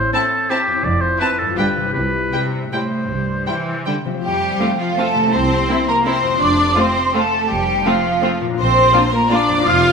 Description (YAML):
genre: classical, orchestral ballroom waltz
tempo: 148-180 BPM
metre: 3/4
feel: rubato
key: C major, F major from 4.2 s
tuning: A4 = 441 Hz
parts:
  - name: warm oboe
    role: second line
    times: 0.0-4.0 s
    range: G4 to D5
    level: -20 LUFS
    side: equal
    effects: none
  - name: concert harp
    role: arpeggios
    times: 0.0-9.9 s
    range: F2 to A4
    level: -25 LUFS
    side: left 6 dB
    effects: none
  - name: clear symphonic cello section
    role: bass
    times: 0.0-9.9 s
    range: F2 to F4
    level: -22 LUFS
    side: right 1 dB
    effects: none
  - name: rich symphonic double bass section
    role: bass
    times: 0.0-9.9 s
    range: F1 to F2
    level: -24 LUFS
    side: right 2 dB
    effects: none
  - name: rich symphonic violin section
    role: melody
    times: 0.1-9.4 s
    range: E4 to A5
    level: -26 LUFS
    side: left 2 dB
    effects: none
  - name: clear symphonic violin section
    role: second line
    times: 0.1-9.9 s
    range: E4 to F5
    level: -23 LUFS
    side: left 3 dB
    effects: none
  - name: rich symphonic viola section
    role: accompaniment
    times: 0.1-9.4 s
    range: G3 to D4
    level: -24 LUFS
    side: right 1 dB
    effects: none
  - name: small flute group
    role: second line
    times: 4.2-9.9 s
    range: F5 to F6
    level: -17 LUFS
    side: right 1 dB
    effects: none
room: wet recital hall reverb, RT60 1.6 s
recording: minimal, uncompressed stereo recording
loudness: -15 LUFS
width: side -5 dB against mid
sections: 0.0-4.2 A section; 4.2-9.9 B section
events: none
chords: 0.0 Am; 0.9 Fmaj7; 1.6 G7; 2.0 C; 4.2 F; 5.3 C7; 6.4 F; 8.6 Bb